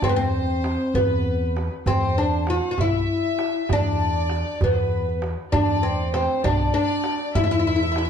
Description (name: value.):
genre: Arabic maqam ensemble.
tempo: 66 BPM (dotted quarters).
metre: 6/8.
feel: straight.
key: E maqam bayati.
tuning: A4 = 441 Hz.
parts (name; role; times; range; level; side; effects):
oud; melody; 0.0-8.1 s; B3 to F#4-50c; -23 LUFS; left 1 dB; none.
rich studio violin section; second line; 0.0-8.1 s; B4 to F#5-50c; -30 LUFS; left 2 dB; none.
upright bass; bass; 0.0-8.1 s; B1 to E2; -26 LUFS; equal; none.
darbuka; percussion; 0.0-8.1 s; none; -26 LUFS; right 1 dB; none.
room: moderate recital hall reverb, RT60 1.3 s.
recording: dark, warm production.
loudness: -20 LUFS.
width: side -8 dB against mid.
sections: 0.0-8.1 A section.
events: none.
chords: none.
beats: | 0.03 0.95 | 1.87 2.78 | 3.70 4.62 | 5.53 6.45 | 7.36.